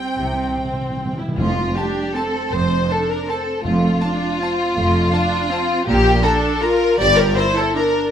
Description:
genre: classical, orchestral ballroom waltz.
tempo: 141-174 BPM.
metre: 3/4.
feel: rubato.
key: F major.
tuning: A4 = 440 Hz.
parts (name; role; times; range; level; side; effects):
rich symphonic violin section; melody; 0.0-7.8 s; G5 to Bb5; -32 LUFS; left 1 dB; none.
mellow hollow concert flute; second line; 0.0-1.1 s; G5; -28 LUFS; equal; none.
rich symphonic violin section; second line; 0.0-8.1 s; F4 to G5; -19 LUFS; left 2 dB; none.
rich studio viola section; accompaniment; 0.0-8.1 s; A3 to G4; -25 LUFS; right 2 dB; none.
rich symphonic cello section; bass; 0.2-7.3 s; F2 to C3; -24 LUFS; right 1 dB; none.
rich symphonic double bass section; bass; 0.2-7.3 s; F1 to C2; -24 LUFS; right 2 dB; none.
timpani; percussion; 0.2-4.2 s; F2 to C3; -27 LUFS; equal; none.
room: light reverb.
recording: close, detailed microphones.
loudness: -16 LUFS.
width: side -9 dB against mid.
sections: 0.0-1.4 A section; 1.4-8.1 B section.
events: timpani fill 0.2-1.4.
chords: 0.2 C; 1.4 F; 5.9 Bb; 7.0 Gm.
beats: | 0.16 0.57 0.98 | 1.37 1.75 2.15 | 2.52 2.90 3.29 | 3.65 4.02 4.41 | 4.77 5.13 5.52 | 5.88 6.24 6.62 | 6.99 7.37 7.76.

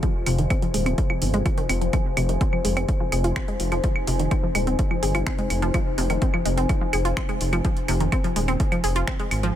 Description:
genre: melodic techno.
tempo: 126 BPM.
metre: 4/4.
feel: straight.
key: F minor.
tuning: A4 = 439 Hz.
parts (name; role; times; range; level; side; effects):
wide unison pluck; arpeggios; 0.0-9.5 s; C3 to Ab4; -27 LUFS; equal; cassette tape, sidechain pumping, ping-pong delay.
analog drone; drone; 0.0-9.6 s; F2 to C3; -36 LUFS; equal; none.
electronic kick drum; drums; 0.0-9.2 s; none; -24 LUFS; equal; none.
techno drum kit; drums; 0.0-9.5 s; claves, finger snaps, hi-hat; -30 LUFS; right 2 dB; sidechain pumping on hats, low-pass filter on hats, sidechain pumping on perc, low-pass filter on perc, low-pass filter on snare.
deep dark ambient pad; texture; 0.0-9.6 s; Eb4 to Ab5; -30 LUFS; left 3 dB; chorus, built-in reverb, sidechain pumping.
dark detuned saw bass; bass; 0.3-9.5 s; Eb1 to Ab1; -24 LUFS; equal; tube saturation, sidechain pumping.
room: little or no reverb.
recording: none.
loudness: -20 LUFS.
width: side -11 dB against mid.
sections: 0.0-9.6 A section.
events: filter sweep on synth arpeggio sound 0.0-9.6.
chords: 0.0 Fm.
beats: | 0.03 0.50 0.98 1.46 | 1.93 2.41 2.88 3.36 | 3.84 4.31 4.79 5.27 | 5.74 6.22 6.69 7.17 | 7.65 8.12 8.60 9.07 | 9.55.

